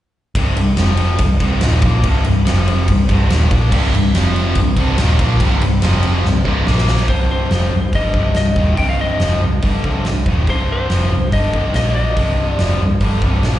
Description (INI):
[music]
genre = hard rock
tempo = 142 BPM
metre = 4/4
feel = straight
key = C minor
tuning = A4 = 440 Hz
[part]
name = vintage muted picked electric bass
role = bass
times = 0.3-13.6 s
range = C1 to Bb1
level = -16 LUFS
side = equal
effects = none
[part]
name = tight distorted guitar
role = riff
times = 0.4-13.6 s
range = C2 to Bb3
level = -20 LUFS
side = left 1 dB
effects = distortion, slapback echo
[part]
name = huge arena drum kit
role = drums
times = 0.4-13.5 s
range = crash cymbal, hi-hat, kick drum, ride cymbal, snare drum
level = -20 LUFS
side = equal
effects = none
[part]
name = tight distorted guitar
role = riff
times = 3.7-7.1 s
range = C2 to Bb3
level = -23 LUFS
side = right 2 dB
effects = distortion
[part]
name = lightly driven lead guitar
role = melody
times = 7.1-12.8 s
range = C5 to G5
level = -22 LUFS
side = left 2 dB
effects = slapback echo, analog delay
[sound]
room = light reverb, studio reverb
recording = live gig heard through the venue's PA, recital hall reverb, nothing above 10.7 kHz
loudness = -13 LUFS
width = side -13 dB against mid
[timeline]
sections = 0.4-7.1 A section; 7.1-13.6 B section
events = drum fill 6.2-7.1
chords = 0.4 C5; 0.8 F5; 1.2 Cm; 2.5 F5; 2.9 Cm; 4.1 F5; 4.6 Cm; 5.8 F5; 6.2 C5; 6.7 Bb5; 7.1 Cm; 11.8 Bb5; 12.2 Cm